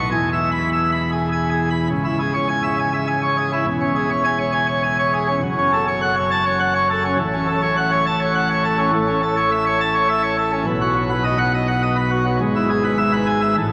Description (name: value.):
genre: classical, organ toccata.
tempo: 103 BPM.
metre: 3/4.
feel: straight.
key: C# minor, E major from 8.9 s.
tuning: A4 = 440 Hz.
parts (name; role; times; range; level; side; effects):
pipe organ, plenum; solo; 0.0-13.7 s; C#1 to B5; -19 LUFS; equal; none.
room: wet cathedral reverb, RT60 5.8 s.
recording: none.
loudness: -19 LUFS.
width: mono.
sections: 0.0-1.9 A section; 1.9-13.7 B section.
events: none.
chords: 0.1 E; 1.9 C#m; 3.7 C#m/E; 5.4 F#m; 7.2 F#m/A; 8.9 A; 10.7 B; 12.4 E/G#.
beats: | 0.10 0.70 1.30 | 1.91 2.50 3.09 | 3.68 4.26 4.84 | 5.43 6.02 6.61 | 7.19 7.78 8.36 | 8.94 9.51 10.09 | 10.67 11.25 11.83 | 12.41 13.00 13.59.